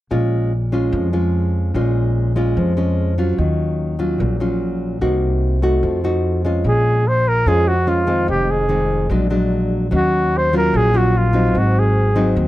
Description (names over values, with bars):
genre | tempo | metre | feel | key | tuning
bossa nova | 147 BPM | 4/4 | straight | Bb minor | A4 = 440 Hz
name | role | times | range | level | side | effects
nylon-string guitar | accompaniment | 0.1-12.5 s | F2 to Gb4 | -19 LUFS | left 1 dB | none
upright bass | bass | 0.1-12.5 s | F1 to F2 | -19 LUFS | equal | none
warm flugelhorn | melody | 6.7-12.4 s | F4 to C5 | -18 LUFS | right 1 dB | none
room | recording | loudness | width
studio reverb | dry, close 1970s-style studio recording | -15 LUFS | side -15 dB against mid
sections
0.1-6.6 A section; 6.6-12.5 B section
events
none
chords
0.1 Bbm7; 3.4 Ebm9; 5.0 Cm7b5; 5.8 F7b9; 6.6 Bbm7; 8.3 Fm7; 9.1 Bbaug7; 9.9 Ebm9; 11.5 Ab7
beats
| 0.11 0.52 0.93 1.34 | 1.75 2.15 2.56 2.97 | 3.38 3.79 4.20 4.61 | 5.01 5.42 5.83 6.24 | 6.65 7.06 7.46 7.87 | 8.28 8.69 9.10 9.51 | 9.91 10.32 10.73 11.14 | 11.55 11.96 12.36